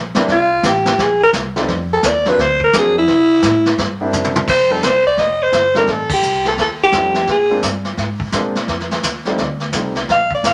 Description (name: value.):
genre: jazz, small-group swing and bop.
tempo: 171 BPM.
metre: 4/4.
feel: swing 64% on 8ths.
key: F mixolydian.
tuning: A4 = 437 Hz.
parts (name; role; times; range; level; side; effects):
upright bass; bass; 0.0-10.5 s; F1 to C3; -28 LUFS; equal; none.
vintage brush drum kit; drums; 0.1-10.5 s; brushed snare drum, crash cymbal, hi-hat, kick drum, snare drum, toms; -22 LUFS; equal; none.
warm concert grand piano; accompaniment; 0.2-9.9 s; Gb3 to Ab4; -24 LUFS; equal; none.
growling alto saxophone; melody; 0.3-7.6, 10.1-10.5 s; E4 to F5; -15 LUFS; equal; none.
room: wet studio reverb, RT60 0.5 s.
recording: none.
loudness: -16 LUFS.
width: mono.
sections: 0.0-4.5 A section; 4.5-10.5 B section.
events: alto saxophone solo 0.0-4.5; drum fill 4.1-4.5; band accent 6.1.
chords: 0.3 C5; 1.7 F5; 2.4 D7alt; 3.1 C7; 4.5 F7; 7.3 Bb7; 8.7 F7.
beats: | 0.28 0.64 0.99 1.33 | 1.69 2.04 2.38 2.73 | 3.08 3.43 3.78 4.13 | 4.48 4.83 5.18 5.53 | 5.88 6.23 6.58 6.93 | 7.28 7.63 7.98 8.33 | 8.68 9.03 9.38 9.73 | 10.08 10.43.